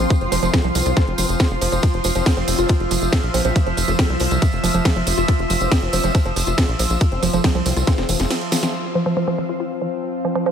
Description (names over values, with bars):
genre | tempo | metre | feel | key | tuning
psychedelic trance | 139 BPM | 4/4 | straight | unclear | A4 = 440 Hz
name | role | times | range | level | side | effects
overtone-sweeping drone | sustained chords | 0.0-10.5 s | F3 to E5 | -25 LUFS | equal | chorus, built-in reverb, sidechain pumping
tight sequencer bass | bass | 0.0-8.3 s | F1 to C2 | -22 LUFS | equal | none
drum and bass drum kit | drums | 0.0-8.7 s | hi-hat, ride cymbal, snare drum | -25 LUFS | right 1 dB | overdrive
granular cloud pad | texture | 0.0-10.5 s | F4 to E6 | -27 LUFS | left 1 dB | built-in reverb, sidechain pumping
electronic kick drum | drums | 0.1-8.0 s | none | -16 LUFS | equal | overdrive
tambourine | percussion | 0.1-8.7 s | none | -29 LUFS | right 5 dB | none
formant-sweep wobble bass | second line | 0.2-8.3 s | A3 to C4 | -32 LUFS | left 6 dB | none
woody wave-folded pluck | riff | 0.3-10.5 s | E3 to F4 | -24 LUFS | moving between left 3 dB and right 8 dB | chorus, auto-pan, cassette tape, sidechain pumping, ping-pong delay
room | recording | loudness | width
light reverb | none | -16 LUFS | side -8 dB against mid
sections
0.0-8.7 A section; 8.7-10.5 B section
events
drop 0.0-8.7; drum fill 7.9-8.7; band accent 8.6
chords
0.0 F5